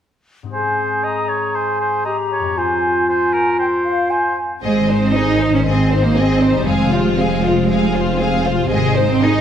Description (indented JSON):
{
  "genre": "cinematic",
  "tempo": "118 BPM",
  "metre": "4/4",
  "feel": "straight",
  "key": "Ab major",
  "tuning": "A4 = 441 Hz",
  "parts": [
    { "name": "concert harp", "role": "arpeggios", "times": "0.4-9.4 s", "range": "F2 to Ab4", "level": "-24 LUFS", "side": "left 9 dB", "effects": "none" },
    { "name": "clear oboe", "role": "second line", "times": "0.5-4.4 s", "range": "Bb4 to Eb5", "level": "-21 LUFS", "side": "right 1 dB", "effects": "none" },
    { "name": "mellow hollow small flute group", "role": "second line", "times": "0.5-4.4 s", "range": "F5 to Bb5", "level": "-21 LUFS", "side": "left 1 dB", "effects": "none" },
    { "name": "warm clarinet", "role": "second line", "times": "0.5-4.4 s", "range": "F4 to Ab4", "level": "-21 LUFS", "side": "left 2 dB", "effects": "none" },
    { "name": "warm symphonic violin section", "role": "melody", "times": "4.6-9.4 s", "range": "C5 to F5", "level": "-25 LUFS", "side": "left 4 dB", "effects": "none" },
    { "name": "rich chamber violin section", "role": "second line", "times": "4.6-9.4 s", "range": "F4 to C5", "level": "-22 LUFS", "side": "left 2 dB", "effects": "none" },
    { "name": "warm symphonic viola section", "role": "accompaniment", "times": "4.6-9.4 s", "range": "C4 to F4", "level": "-22 LUFS", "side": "right 1 dB", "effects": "none" },
    { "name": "rich symphonic cello section", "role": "bass", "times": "4.6-9.4 s", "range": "G3 to Eb4", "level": "-18 LUFS", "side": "right 2 dB", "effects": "none" },
    { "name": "rich symphonic double bass section", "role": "bass", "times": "4.6-9.4 s", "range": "F1 to Ab1", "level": "-20 LUFS", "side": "right 4 dB", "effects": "none" }
  ],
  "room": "moderate scoring stage reverb, RT60 2.0 s",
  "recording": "none",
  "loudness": "-14 LUFS",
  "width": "side -9 dB against mid",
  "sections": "0.5-4.6 A section; 4.6-9.4 B section",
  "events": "none",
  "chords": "0.5 Ab; 2.6 Fm; 4.6 Ab; 6.7 Fm; 8.7 Ab"
}